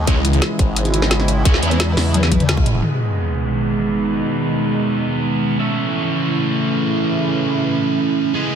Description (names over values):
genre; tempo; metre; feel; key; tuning
dark technical drum and bass; 174 BPM; 4/4; straight; G# phrygian; A4 = 440 Hz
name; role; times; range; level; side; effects
sweeping resonant pad; sustained chords; 0.0-8.6 s; B2 to E4; -20 LUFS; equal; chorus, sidechain pumping
formant-sweep wobble bass; bass; 0.0-2.8 s; G#1 to E2; -18 LUFS; equal; chorus, tube saturation
thick fuzz guitar; stabs; 0.1-8.6 s; G#3 to E5; -21 LUFS; right 4 dB; distortion, low-pass filter, ping-pong delay
drum and bass drum kit; drums; 0.1-2.9 s; crash cymbal, hi-hat, snare drum, toms; -20 LUFS; left 1 dB; low-pass filter on hats, low-pass filter on snare, low-pass filter on toms, low-pass filter on cymbals, low-pass filter on room
electronic kick drum; drums; 0.1-2.6 s; none; -16 LUFS; equal; none
sub drop; sound effects; 2.8-4.2 s; none; -23 LUFS; left 1 dB; none
room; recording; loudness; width
moderate lush hall reverb, RT60 1.8 s; dense, heavily limited modern master; -16 LUFS; side -8 dB against mid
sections
0.0-2.8 A section; 2.8-8.6 B section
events
drop 0.0-2.8; drum fill 2.1-2.8; band accent 2.5; impact 2.8-4.2; filter sweep on analog synth pad 2.8-8.6; filter sweep on distorted electric guitar 2.8-8.6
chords
0.1 C#m; 2.8 G#m; 5.6 A